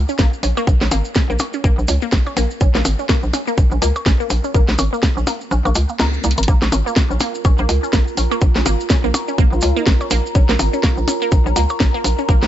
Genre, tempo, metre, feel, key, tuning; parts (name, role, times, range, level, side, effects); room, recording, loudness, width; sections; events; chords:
minimal techno; 124 BPM; 4/4; swing 58% on 16ths; Bb minor; A4 = 441 Hz
hollow knocking FM bass; bass; 0.0-12.5 s; Ab1 to Db2; -18 LUFS; equal; sidechain pumping
resonant blip pluck; riff; 0.1-12.3 s; Bb3 to Bb4; -24 LUFS; equal; phaser, sidechain pumping, digital delay
maracas; percussion; 0.1-12.5 s; -31 LUFS; right 1 dB
electronic kick drum; drums; 0.2-12.4 s; -15 LUFS; equal
garage drum kit; drums; 0.2-12.5 s; hi-hat, snare drum; -22 LUFS; equal
percussion blips; percussion; 0.2-12.4 s; -26 LUFS; left 2 dB; digital delay
warbly tape-like pad; texture; 6.5-12.5 s; F4 to Bb5; -25 LUFS; right 2 dB; chorus, built-in reverb, sidechain pumping
breathy flute-like synth lead; melody; 9.5-9.9 s; F4; -26 LUFS; left 3 dB; lush chorus, digital delay
little or no reverb; nothing above 7.8 kHz; -14 LUFS; side -12 dB against mid
0.0-6.5 A section; 6.5-12.5 B section
kick drops out 5.5-6.5; band accent 6.0; drum fill 6.2; drop 6.5-12.5
0.0 N.C.; 6.5 Bb5